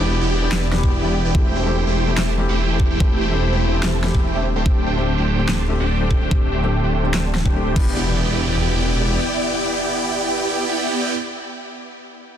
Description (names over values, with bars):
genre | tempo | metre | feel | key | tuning
future bass | 145 BPM | 4/4 | half-time | E minor | A4 = 440 Hz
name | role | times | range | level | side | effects
felt-muted upright piano | accompaniment | 0.0-11.2 s | D3 to G4 | -26 LUFS | left 4 dB | sidechain pumping, dub echo
supersaw chords | riff | 0.0-11.1 s | A3 to A5 | -22 LUFS | right 1 dB | phaser, lush chorus, sidechain pumping, low-pass filter, dub echo
wide detuned saw bass | bass | 0.0-9.2 s | D1 to E1 | -21 LUFS | equal | chorus, sidechain pumping
big-room dance drum kit | drums | 0.5-7.8 s | crash cymbal, handclaps, snare drum | -26 LUFS | equal | overdrive
electronic kick drum | drums | 0.8-7.8 s | none | -17 LUFS | equal | none
impact | sound effects | 7.9-11.2 s | none | -30 LUFS | equal | none
room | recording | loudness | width
little or no reverb | dense, heavily limited modern master | -17 LUFS | side -9 dB against mid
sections
0.0-8.0 A section; 8.0-11.3 B section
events
filter sweep on detuned saw bass 0.0-8.0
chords
0.0 Em7; 1.3 Am7/E; 4.5 D7sus4; 7.8 Em7